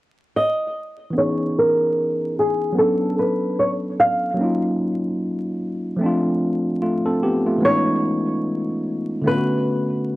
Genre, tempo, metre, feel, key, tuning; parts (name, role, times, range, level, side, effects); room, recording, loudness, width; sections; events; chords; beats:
hip hop; 74 BPM; 4/4; swing 57% on 16ths; A4 = 440 Hz
flamenco guitar; melody; 0.4-10.0 s; G#4 to E#5; -20 LUFS; equal; low-pass filter
tine electric piano; accompaniment; 1.1-10.2 s; D3 to A4; -21 LUFS; equal; overdrive, slow stereo tremolo, cassette tape, low-pass filter
light reverb; dry, gritty hardware recording, vinyl crackle; -18 LUFS; side -18 dB against mid
0.0-1.2 A section; 1.2-7.6 B section; 7.6-10.2 C section
filter sweep 1.2-7.6
0.0 N.C.; 1.2 C#m9; 2.8 Bm9; 4.4 D#m9; 6.0 Dm7; 7.6 C#m9; 9.3 Bm9
0.34 | 1.15 1.96 2.77 3.58 | 4.39 5.21 6.02 6.83 | 7.64 8.45 9.26 10.07